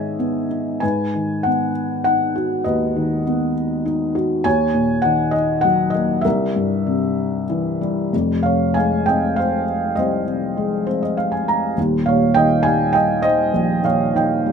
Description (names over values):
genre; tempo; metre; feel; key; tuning
classical, lyrical solo piano; 92-104 BPM; 3/4; rubato; G# minor, F minor from 8.1 s; A4 = 440 Hz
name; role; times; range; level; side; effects
felt-muted upright piano; solo; 0.0-14.5 s; Eb1 to Bb5; -17 LUFS; equal; none
room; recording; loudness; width
light reverb; close, detailed microphones; -17 LUFS; side -6 dB against mid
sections
0.0-8.1 A section; 8.1-14.5 B section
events
felt piano fill 10.6-11.8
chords
0.0 Emaj7/G#; 0.8 G#m7; 4.5 D#m7; 6.2 C7; 8.1 Fm7; 11.8 Eb7